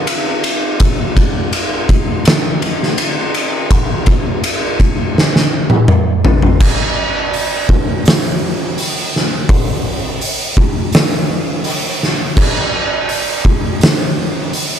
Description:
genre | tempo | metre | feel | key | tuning
metal | 83 BPM | 4/4 | straight | none | none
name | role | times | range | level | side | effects
oversized low-tuned drum kit | drums | 0.1-14.7 s | crash cymbal, hi-hat, kick drum, ride cymbal, snare drum, toms | -12 LUFS | equal | none
room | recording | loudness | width
little or no reverb | dark, warm production | -12 LUFS | side -9 dB against mid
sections
0.0-6.6 A section; 6.6-14.8 B section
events
drum fill 5.2-6.6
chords
none

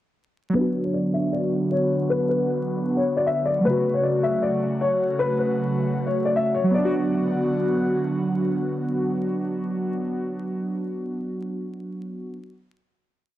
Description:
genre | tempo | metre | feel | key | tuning
hip hop, trap | 155 BPM | 4/4 | half-time | B minor | A4 = 440 Hz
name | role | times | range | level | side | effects
warbly lo-fi synth keys | accompaniment | 0.5-12.4 s | C#3 to F#4 | -24 LUFS | equal | chorus, low-pass filter, cassette tape
dark grand piano | melody | 0.6-7.9 s | B4 to E5 | -24 LUFS | left 3 dB | low-pass filter, cassette tape
airy breathy pad | sustained chords | 0.7-10.0 s | C#3 to F#4 | -28 LUFS | right 1 dB | chorus, phaser, low-pass filter, cassette tape
room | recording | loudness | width
light reverb, small room ambience | home recording on cassette, vinyl crackle | -21 LUFS | side -13 dB against mid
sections
0.6-6.7 breakdown; 6.7-9.8 final chord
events
filter sweep 0.6-6.7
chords
0.6 Bm; 3.6 F#m; 6.7 Bm

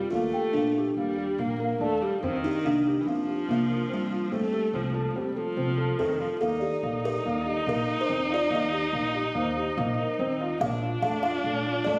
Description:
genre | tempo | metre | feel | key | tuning
contemporary instrumental, chamber music in an uneven meter | 143 BPM | 5/4 | straight | unclear | A4 = 441 Hz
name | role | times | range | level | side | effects
buzzing kalimba | melody | 0.0-12.0 s | G3 to F5 | -32 LUFS | equal | none
dark viola | second line | 0.0-12.0 s | Eb3 to Eb4 | -32 LUFS | equal | none
felt-muted upright piano | arpeggios | 0.0-12.0 s | A3 to Bb4 | -34 LUFS | equal | none
upright bass | bass | 0.1-12.0 s | Bb1 to F2 | -38 LUFS | equal | none
large celesta | texture | 0.3-2.4, 6.6-10.8 s | C5 to G5 | -39 LUFS | equal | none
room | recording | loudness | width
moderate recital hall reverb, RT60 1.5 s | recorded on a phone in the room, studio reverb | -27 LUFS | mono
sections
0.0-6.4 A section; 6.4-12.0 B section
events
none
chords
0.1 Ebmaj9; 2.2 F9sus4; 4.3 F; 6.4 Eb; 10.6 Bbmaj7

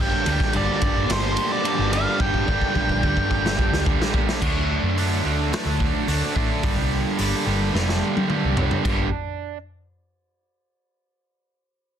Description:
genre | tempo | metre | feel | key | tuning
quiet-loud alternative rock | 108 BPM | 4/4 | straight | G minor | A4 = 440 Hz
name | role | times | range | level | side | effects
octave-fuzz lead guitar | melody | 0.0-3.8 s | C5 to G5 | -25 LUFS | equal | distortion, slapback echo, plate reverb
tonewheel organ | sustained chords | 0.0-4.4 s | G4 to Bb5 | -36 LUFS | equal | none
distorted electric guitar | riff | 0.0-9.1 s | G2 to D4 | -28 LUFS | left 15 dB | distortion
distorted electric guitar | riff | 0.0-9.6 s | G2 to D4 | -25 LUFS | right 13 dB | overdrive
hollow-body short-scale fingered electric bass | bass | 0.0-9.1 s | F1 to G2 | -25 LUFS | equal | none
raw garage drum kit | drums | 0.3-9.0 s | crash cymbal, hi-hat, kick drum, ride cymbal, snare drum, toms | -25 LUFS | equal | none
room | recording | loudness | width
light reverb | dense, heavily limited modern master | -19 LUFS | side -9 dB against mid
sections
0.0-4.4 A section; 4.4-8.9 B section; 8.9-11.1 C section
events
drum fill 2.2-4.4, 7.7-8.9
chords
0.0 Gm; 4.4 D; 6.6 Gm; 8.9 G5

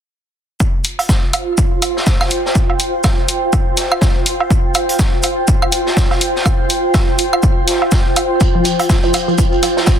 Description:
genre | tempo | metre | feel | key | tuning
minimal techno | 123 BPM | 4/4 | swing 58% on 16ths | unclear | A4 = 440 Hz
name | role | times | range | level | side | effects
electronic kick drum | drums | 0.6-10.0 s | none | -14 LUFS | equal | none
raw garage drum kit | drums | 0.6-10.0 s | hi-hat, shaker, snare drum | -24 LUFS | equal | high-pass filter on hats, high-pass filter on snare, high-pass filter on perc, high-pass filter on room
granular cloud pad | texture | 1.2-10.0 s | F4 to G5 | -18 LUFS | right 1 dB | built-in reverb, sidechain pumping
electronic hi-hat | drums | 0.8-9.7 s | none | -19 LUFS | left 2 dB | none
woodblock and claves | percussion | 1.0-9.7 s | none | -20 LUFS | right 3 dB | overdrive, dub echo
shekere | percussion | 8.4-10.0 s | none | -26 LUFS | right 5 dB | none
resonant blip pluck | riff | 8.6-9.8 s | F3 | -19 LUFS | equal | phaser, sidechain pumping, digital delay
room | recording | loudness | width
light reverb, small room ambience | dense, heavily limited modern master | -12 LUFS | side -9 dB against mid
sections
0.6-10.0 A section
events
none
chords
0.6 F5

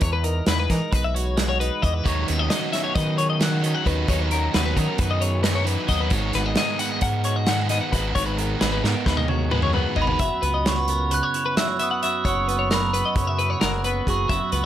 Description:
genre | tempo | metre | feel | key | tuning
math rock and midwest emo | 265 BPM (eighths) | 9/8 | straight | unclear | A4 = 440 Hz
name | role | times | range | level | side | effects
twelve-string electric guitar | accompaniment | 0.0-14.7 s | F#2 to B4 | -30 LUFS | right 6 dB | none
twelve-string electric guitar | arpeggios | 0.0-14.6 s | G#4 to F#5 | -26 LUFS | left 6 dB | lush chorus, slapback echo
growling fingered electric bass | bass | 0.0-14.7 s | F#1 to E3 | -25 LUFS | equal | overdrive
loose indie drum kit | drums | 0.0-14.6 s | hi-hat, kick drum, snare drum, toms | -25 LUFS | equal | none
crunchy overdriven guitar | riff | 2.0-10.2 s | G#2 to D#4 | -28 LUFS | right 2 dB | none
glockenspiel with hard plastic mallets | melody | 10.0-14.7 s | B5 to F#6 | -25 LUFS | right 3 dB | slapback echo
room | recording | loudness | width
little or no reverb | none | -20 LUFS | side -11 dB against mid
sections
0.0-10.2 A section; 10.2-14.7 B section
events
drum fill 8.8-10.2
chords
0.0 Emaj9; 2.1 B69/D#; 6.1 G#m9; 10.2 F#7sus4

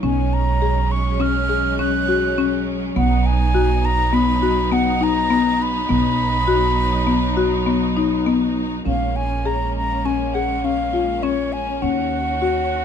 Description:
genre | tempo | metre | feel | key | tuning
contemporary instrumental, chamber music in an uneven meter | 102 BPM | 5/4 | straight | B lydian | A4 = 440 Hz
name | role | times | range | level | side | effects
breathy concert flute | melody | 0.0-12.8 s | C#5 to F#6 | -23 LUFS | equal | none
rich studio string section | sustained chords | 0.0-12.8 s | D#3 to F#4 | -25 LUFS | right 2 dB | none
buzzing marimba with medium mallets | arpeggios | 0.0-12.8 s | B3 to G#4 | -21 LUFS | left 7 dB | none
upright bass | bass | 0.0-12.8 s | A#1 to D#2 | -23 LUFS | right 4 dB | none
room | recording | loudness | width
light reverb | dark, warm production | -17 LUFS | side -8 dB against mid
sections
0.0-8.9 A section; 8.9-12.8 B section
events
none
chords
0.0 C#sus4/B; 3.0 B; 8.9 A#m7; 11.8 D#m7

